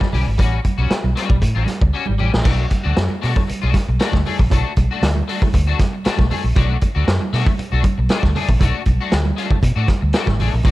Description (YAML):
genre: funk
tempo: 117 BPM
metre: 4/4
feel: straight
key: B minor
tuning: A4 = 440 Hz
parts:
  - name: electric guitar at the edge of break-up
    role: accompaniment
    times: 0.0-10.7 s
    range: G3 to G#4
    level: -25 LUFS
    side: left 7 dB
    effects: ensemble chorus
  - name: vintage drum kit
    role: drums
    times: 0.0-10.7 s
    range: crash cymbal, hi-hat, kick drum, snare drum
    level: -18 LUFS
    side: equal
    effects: none
  - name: vintage muted fingered electric bass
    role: bass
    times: 0.1-10.7 s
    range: G#1 to B2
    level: -18 LUFS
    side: equal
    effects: none
  - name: congas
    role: percussion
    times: 0.1-10.7 s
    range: none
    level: -27 LUFS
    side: right 5 dB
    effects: none
room: small room ambience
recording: dark, warm production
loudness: -15 LUFS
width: side -17 dB against mid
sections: 0.0-2.5 A section; 2.5-10.7 B section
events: drum fill 1.9-2.5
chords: 0.0 A13; 2.5 Bm7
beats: | 0.39 0.91 1.42 1.94 | 2.45 2.97 3.48 4.00 | 4.51 5.02 5.54 6.05 | 6.56 7.07 7.59 8.10 | 8.61 9.12 9.63 10.14 | 10.65